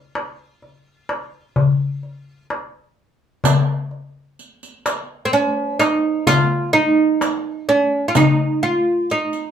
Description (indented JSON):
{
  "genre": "Arabic maqam ensemble",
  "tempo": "128 BPM (eighths)",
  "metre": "10/8",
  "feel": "straight",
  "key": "unclear",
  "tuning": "A4 = 439 Hz",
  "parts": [
    { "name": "oud", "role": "melody", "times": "0.0-9.5 s", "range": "C4 to F4", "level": "-16 LUFS", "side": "right 2 dB", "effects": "none" },
    { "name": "darbuka", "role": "percussion", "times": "0.2-8.7 s", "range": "none", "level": "-19 LUFS", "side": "left 3 dB", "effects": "none" },
    { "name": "riq", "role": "percussion", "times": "3.5-9.4 s", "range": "none", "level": "-25 LUFS", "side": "right 4 dB", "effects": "none" }
  ],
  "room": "wet small room reverb, RT60 0.6 s",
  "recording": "heard from further back in the room",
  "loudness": "-16 LUFS",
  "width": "side -8 dB against mid",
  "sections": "0.0-3.4 A section; 3.4-9.5 B section",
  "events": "none",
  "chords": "none"
}